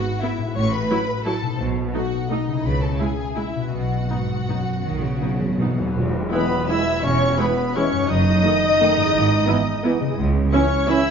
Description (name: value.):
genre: classical, orchestral ballroom waltz.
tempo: 153-186 BPM.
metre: 3/4.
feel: rubato.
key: E major.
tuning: A4 = 440 Hz.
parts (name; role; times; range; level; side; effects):
warm studio violin section; melody; 0.0-11.1 s; D#5 to E6; -29 LUFS; left 3 dB; none.
warm studio violin section; second line; 0.0-11.1 s; D#4 to E5; -28 LUFS; left 2 dB; none.
concert harp; arpeggios; 0.0-11.1 s; E2 to D#5; -28 LUFS; left 6 dB; none.
rich studio viola section; accompaniment; 0.2-11.0 s; F#3 to E4; -27 LUFS; right 3 dB; none.
rich studio cello section; bass; 0.6-10.5 s; C#2 to D#3; -26 LUFS; right 3 dB; none.
warm studio double bass section; bass; 0.6-10.5 s; E1 to C#2; -26 LUFS; right 3 dB; none.
timpani; percussion; 1.6-5.9 s; B2; -28 LUFS; equal; none.
cymbal swell and tam-tam; percussion; 3.7-7.4 s; none; -33 LUFS; left 2 dB; none.
mellow cor anglais; second line; 6.3-11.1 s; B3 to E4; -28 LUFS; right 3 dB; none.
mellow flute section; second line; 6.3-11.1 s; B4 to E5; -27 LUFS; equal; none.
clear trombone section; sustained chords; 6.3-11.0 s; D#3 to C#4; -28 LUFS; right 4 dB; none.
warm French horn section; sustained chords; 6.3-11.1 s; B3 to E4; -23 LUFS; left 2 dB; none.
room: wet recital hall reverb, RT60 1.8 s.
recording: dark, warm production, nothing above 7.5 kHz.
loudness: -18 LUFS.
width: side -6 dB against mid.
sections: 0.0-6.0 A section; 6.0-11.1 B section.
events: timpani fill 3.7-6.0; band accent 6.0-6.3.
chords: 0.0 E/G#; 0.6 F#m7/A; 1.6 B7b9; 2.7 C#m; 3.7 B; 6.0 E; 8.1 D#dim/F#; 9.1 E/G#; 10.2 C#m.